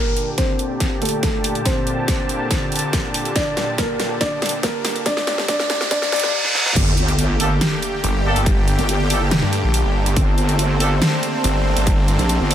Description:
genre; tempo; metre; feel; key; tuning
heavy wobble dubstep; 141 BPM; 4/4; half-time; G minor; A4 = 441 Hz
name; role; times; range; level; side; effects
dark grand piano; melody; 0.0-6.3 s; A3 to D5; -24 LUFS; left 1 dB; tape echo
supersaw chords; sustained chords; 0.0-12.5 s; Bb2 to A5; -25 LUFS; equal; sidechain pumping, low-pass filter
riser, reverse cymbal and sub drop; sound effects; 0.0-8.5 s; none; -25 LUFS; right 2 dB; none
warbly tape-like pad; texture; 0.1-12.5 s; D4 to A5; -32 LUFS; right 1 dB; chorus, built-in reverb, sidechain pumping
dubstep drum kit; drums; 0.2-12.5 s; crash cymbal, hi-hat, snare drum; -23 LUFS; equal; overdrive, high-pass filter on hats, high-pass filter on snare, high-pass filter on cymbals, high-pass filter on room
electronic kick drum; drums; 0.4-12.0 s; none; -21 LUFS; equal; overdrive
wobble bass; bass; 6.8-12.5 s; G1 to Bb1; -18 LUFS; equal; chorus, overdrive
warm brass ensemble; stabs; 7.4-12.5 s; Bb3 to A4; -26 LUFS; right 1 dB; tape echo
snarling distorted saw bass; bass; 8.0-12.2 s; G1 to G2; -18 LUFS; equal; distortion, overdrive
room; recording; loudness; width
light reverb; high-pass filter; -16 LUFS; side -10 dB against mid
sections
0.0-6.8 A section; 6.8-12.5 B section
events
build-up 0.0-6.8; drum fill 0.0-6.3, 6.4-6.8; riser 0.0-6.8; filter sweep on supersaw synth 0.0-6.8; filter sweep 0.0-6.8; reverse cymbal 5.9-6.8; drop 6.8-12.5; impact 6.8-8.5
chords
0.0 Gmadd9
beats
0.38 0.80 1.23 | 1.66 2.08 2.51 2.93 | 3.36 3.78 4.21 4.63 | 5.06 5.49 5.91 6.34 | 6.76 7.19 7.61 8.04 | 8.46 8.89 9.31 9.74 | 10.17 10.59 11.02 11.44 | 11.87 12.29

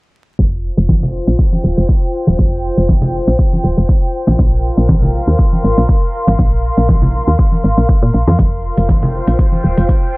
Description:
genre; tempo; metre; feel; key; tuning
deep house; 120 BPM; 4/4; swing 54% on 16ths; unclear; A4 = 439 Hz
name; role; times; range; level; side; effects
woody FM bass; bass; 0.4-9.9 s; Eb1 to Bb2; -14 LUFS; equal; sidechain pumping
electronic kick drum; drums; 0.4-10.0 s; none; -13 LUFS; equal; none
airy breathy pad; texture; 0.8-10.2 s; F4 to C6; -20 LUFS; equal; chorus, sidechain pumping
congas; percussion; 0.9-9.6 s; none; -18 LUFS; equal; none
electronic hi-hat; drums; 8.4-10.0 s; none; -45 LUFS; equal; none
room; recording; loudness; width
little or no reverb; dry, gritty hardware recording, vinyl crackle, low-pass filter; -11 LUFS; side -24 dB against mid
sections
0.4-10.2 A section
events
filter sweep on FM bass 0.4-10.2; filter sweep 0.4-10.2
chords
0.4 Fsus2; 4.1 Bbsus2; 8.4 Fsus4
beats
| 0.39 0.89 1.39 1.89 | 2.39 2.89 3.39 3.89 | 4.39 4.89 5.39 5.89 | 6.39 6.89 7.39 7.89 | 8.39 8.89 9.39 9.89

